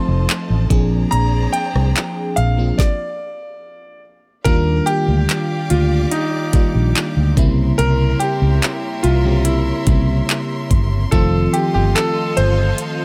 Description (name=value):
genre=contemporary R&B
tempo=72 BPM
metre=4/4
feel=straight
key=Eb major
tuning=A4 = 440 Hz
part: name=clear baby grand piano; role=melody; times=0.0-13.0 s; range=Eb4 to C6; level=-24 LUFS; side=equal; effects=digital delay
part: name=FM electric piano with soft pad layer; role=accompaniment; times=0.0-13.0 s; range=Db3 to D5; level=-24 LUFS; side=equal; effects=chorus
part: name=warm studio string section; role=sustained chords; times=0.0-13.0 s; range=F4 to D6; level=-32 LUFS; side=equal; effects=none
part: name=vintage muted fingered electric bass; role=bass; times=0.1-12.7 s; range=F1 to Eb2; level=-19 LUFS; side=equal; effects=none
part: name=smooth R&B drum kit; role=drums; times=0.3-13.0 s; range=handclaps, hi-hat, kick drum, rim click, snare drum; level=-20 LUFS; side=equal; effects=none
room=digital ambience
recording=none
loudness=-17 LUFS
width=mono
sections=0.0-4.5 A section; 4.5-13.0 A section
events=stop 2.8-4.5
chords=0.0 F7; 0.7 Bb9; 4.5 Ebmaj9; 7.4 C7b9; 11.1 F7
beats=0.29 | 1.12 1.95 2.79 3.62 | 4.45 5.29 6.12 6.95 | 7.79 8.62 9.45 10.29 | 11.12 11.95 12.79